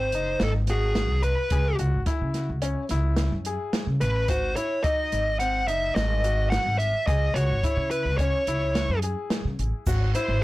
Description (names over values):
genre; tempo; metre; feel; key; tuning
progressive instrumental, band music in an uneven meter; 108 BPM; 5/4; straight; C# minor; A4 = 437 Hz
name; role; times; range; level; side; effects
smooth overdriven lead guitar; melody; 0.0-10.4 s; G#4 to F#5; -26 LUFS; equal; none
bright baby grand piano; arpeggios; 0.0-10.4 s; B#3 to G#4; -33 LUFS; left 3 dB; tape echo
upright bass; bass; 0.0-10.4 s; F#1 to C#3; -26 LUFS; equal; none
open jazz drum kit; drums; 0.1-10.3 s; crash cymbal, hi-hat, kick drum, snare drum; -29 LUFS; equal; none
tube shaker; percussion; 9.9-10.3 s; none; -43 LUFS; right 6 dB; none
room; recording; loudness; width
little or no reverb; blown-out, overdriven recording, overdrive; -22 LUFS; side -18 dB against mid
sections
0.0-9.9 A section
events
none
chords
0.0 G#7; 1.5 C#m; 4.3 G#7(no3); 7.1 C#m; 9.9 G#7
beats
0.41 0.96 | 1.52 2.07 2.62 3.18 3.73 | 4.29 4.84 5.40 5.96 6.52 | 7.08 7.64 8.20 8.76 9.31 | 9.87 10.43